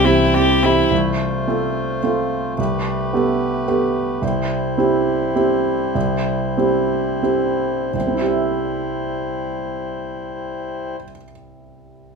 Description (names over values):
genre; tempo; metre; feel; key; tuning
neoclassical piano and strings; 84-110 BPM; 3/4; rubato; C major; A4 = 440 Hz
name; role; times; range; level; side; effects
rich violin; melody; 0.0-0.9 s; E4 to G4; -17 LUFS; left 2 dB; none
warm cello; second line; 0.0-0.9 s; E3 to G3; -28 LUFS; right 5 dB; none
warm grand piano; accompaniment; 0.0-12.2 s; C2 to E5; -19 LUFS; right 2 dB; none
pedal harmonium; sustained chords; 0.0-11.0 s; G3 to C5; -24 LUFS; left 2 dB; none
marimba with medium hard mallets; arpeggios; 0.0-0.9 s; C4 to G4; -27 LUFS; left 1 dB; none
rich double bass; bass; 0.0-0.9 s; C2; -23 LUFS; right 2 dB; none
room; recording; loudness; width
moderate large studio reverb, RT60 0.8 s; band playing live in one room, faint mains hum; -17 LUFS; side -4 dB against mid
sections
0.9-7.9 A section; 7.9-12.2 B section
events
slowing down 3.4-7.9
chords
0.0 C; 0.9 F/C; 2.6 Gadd9/C; 4.2 C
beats
0.34 | 0.91 1.47 2.02 | 2.58 3.13 3.67 | 4.22 4.78 5.36 | 5.95 6.58 7.23 | 7.94 8.64 9.35 | 10.05 10.75 11.45